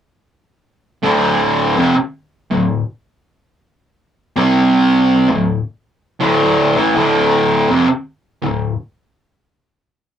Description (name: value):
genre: metal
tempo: 81 BPM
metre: 4/4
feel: straight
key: D minor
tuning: A4 = 435 Hz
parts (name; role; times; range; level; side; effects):
- fuzz guitar; solo; 1.0-8.7 s; D2 to C4; -12 LUFS; equal; distortion
room: wet booth ambience, RT60 0.2 s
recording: rough rehearsal-room recording, tube saturation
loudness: -13 LUFS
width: side -9 dB against mid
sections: 1.0-10.2 A section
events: none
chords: 1.0 D5; 4.4 C5; 5.3 D5